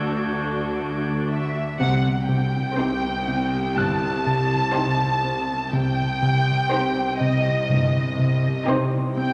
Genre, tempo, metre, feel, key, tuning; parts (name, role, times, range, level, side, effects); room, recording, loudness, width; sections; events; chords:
cinematic; 61 BPM; 4/4; straight; A4 = 440 Hz
rich symphonic violin section; melody; 0.0-9.3 s; A4 to A5; -28 LUFS; equal
rich studio viola section; accompaniment; 0.0-9.3 s; C4 to F#4; -31 LUFS; equal
rich studio double bass section; bass; 0.0-8.5 s; G1 to D2; -33 LUFS; equal
rich symphonic cello section; bass; 0.0-8.5 s; D2 to C3; -35 LUFS; equal
bowed-like drone; drone; 0.0-9.3 s; C2 to D2; -32 LUFS; equal; built-in reverb
bright concert grand piano; texture; 0.0-9.3 s; E6 to F#6; -38 LUFS; equal
rich chamber violin section; texture; 0.0-1.3 s; G6 to G#6; -37 LUFS; equal
fat analog bass; riff; 1.8-9.3 s; C3 to C4; -25 LUFS; equal
rich chamber violin section; second line; 2.8-9.3 s; G4 to C5; -32 LUFS; equal
wet scoring stage reverb, RT60 2.0 s; nothing above 11.0 kHz; -22 LUFS; mono
0.0-1.8 A section; 1.8-9.3 B section
band accent 1.8-2.8
0.0 D; 1.8 Cm